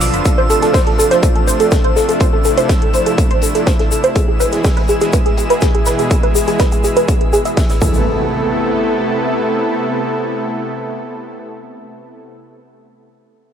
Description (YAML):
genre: progressive house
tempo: 123 BPM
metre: 4/4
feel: straight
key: A harmonic minor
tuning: A4 = 440 Hz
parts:
  - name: supersaw pad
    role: sustained chords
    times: 0.0-12.2 s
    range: B2 to A4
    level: -19 LUFS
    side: equal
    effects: vintage 12-bit sampler grit, sidechain pumping
  - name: wide unison pluck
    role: arpeggios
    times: 0.0-8.3 s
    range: G#4 to E6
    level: -16 LUFS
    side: right 1 dB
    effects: analog chorus, sidechain pumping, dub echo
  - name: electronic hi-hat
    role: drums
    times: 0.0-7.8 s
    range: none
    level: -30 LUFS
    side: right 3 dB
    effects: sidechain pumping on hats
  - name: warm soul drum kit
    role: drums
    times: 0.0-7.8 s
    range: hi-hat, snare drum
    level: -30 LUFS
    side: left 2 dB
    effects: sidechain pumping on hats, high-pass filter on hats, high-pass filter on snare, high-pass filter on room
  - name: tube shaker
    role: percussion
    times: 0.0-8.0 s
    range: none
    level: -26 LUFS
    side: left 5 dB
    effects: none
  - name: drifting glass-harmonics texture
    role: texture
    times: 0.0-8.1 s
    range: E6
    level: -28 LUFS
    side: right 2 dB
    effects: chorus, built-in reverb, sidechain pumping
  - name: electronic kick drum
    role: drums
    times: 0.3-7.9 s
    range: none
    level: -14 LUFS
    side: equal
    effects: none
  - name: impact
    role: sound effects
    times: 7.8-12.2 s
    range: none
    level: -25 LUFS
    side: equal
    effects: none
room: light reverb, studio reverb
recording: none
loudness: -12 LUFS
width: side -8 dB against mid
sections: 0.0-8.1 A section; 8.1-12.0 B section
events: filter sweep on synth pluck 0.0-8.1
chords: 0.3 Dm7; 4.2 E; 7.8 Amadd9